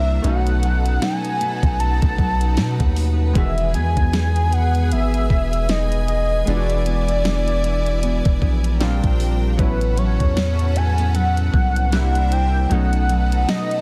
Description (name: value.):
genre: contemporary R&B.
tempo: 77 BPM.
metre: 4/4.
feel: swing 58% on 16ths.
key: E major.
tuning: A4 = 440 Hz.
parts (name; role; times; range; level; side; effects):
warm velvety synth lead; melody; 0.0-13.8 s; B4 to A5; -27 LUFS; equal; chorus, digital delay.
warm analog keys; accompaniment; 0.0-13.8 s; D#3 to F#4; -31 LUFS; equal; chorus.
clear studio string section; sustained chords; 0.0-13.8 s; C#4 to G#5; -34 LUFS; equal; none.
nylon-string guitar; arpeggios; 0.0-13.8 s; A2 to G#4; -30 LUFS; equal; none.
long sustained 808-style bass; bass; 0.0-13.5 s; E1 to B2; -22 LUFS; equal; none.
smooth R&B drum kit; drums; 0.2-13.8 s; hi-hat, kick drum, snare drum; -23 LUFS; equal; none.
room: little or no reverb.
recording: dense, heavily limited modern master.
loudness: -19 LUFS.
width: mono.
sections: 0.0-13.8 A section.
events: none.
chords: 0.2 B7; 3.4 Emaj7; 6.5 E7; 8.8 A#69; 9.6 A69; 11.9 C9; 12.7 B7.